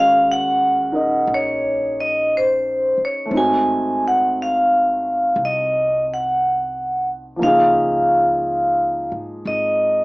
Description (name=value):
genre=jazz ballad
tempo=59 BPM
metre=4/4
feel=swing 67% on 8ths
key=unclear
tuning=A4 = 440 Hz
part: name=vibraphone with medium hard mallets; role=melody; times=0.0-10.0 s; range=C5 to Ab5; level=-17 LUFS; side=equal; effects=none
part: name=warm concert grand piano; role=accompaniment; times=0.0-10.0 s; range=F3 to Eb5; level=-24 LUFS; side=equal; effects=none
part: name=upright bass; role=bass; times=0.0-10.0 s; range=Ab1 to Ab2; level=-34 LUFS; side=equal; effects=none
room=light reverb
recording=small speaker sound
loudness=-16 LUFS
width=side -23 dB against mid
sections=0.0-10.0 A section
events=none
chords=0.0 Ebm7; 3.3 Ab7b9; 7.4 Dbadd9